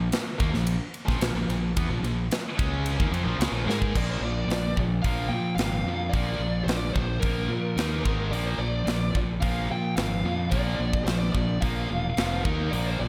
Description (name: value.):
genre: hard rock.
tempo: 110 BPM.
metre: 4/4.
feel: straight.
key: Bb mixolydian.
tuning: A4 = 440 Hz.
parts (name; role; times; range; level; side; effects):
scooped high-gain guitar; riff; 0.0-13.1 s; F2 to Ab4; -37 LUFS; equal; distortion, slapback echo.
tight distorted guitar; riff; 0.0-13.1 s; F2 to Ab4; -34 LUFS; equal; distortion, slapback echo.
fuzz fingered electric bass; bass; 0.0-13.1 s; E1 to Bb2; -31 LUFS; equal; overdrive.
tight metal drum kit; drums; 0.1-12.9 s; crash cymbal, hi-hat, kick drum, ride cymbal, snare drum; -31 LUFS; equal; none.
biting lead guitar; melody; 3.7-13.1 s; Bb4 to G5; -35 LUFS; equal; overdrive, slapback echo.
room: light reverb, studio reverb.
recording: none.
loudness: -26 LUFS.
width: mono.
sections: 0.0-3.9 A section; 3.9-13.1 B section.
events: drum fill 3.7.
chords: 0.0 Bb5; 3.9 Bb; 7.8 Eb5; 8.1 Ab5; 8.3 Bb; 12.2 F5; 12.4 Eb5.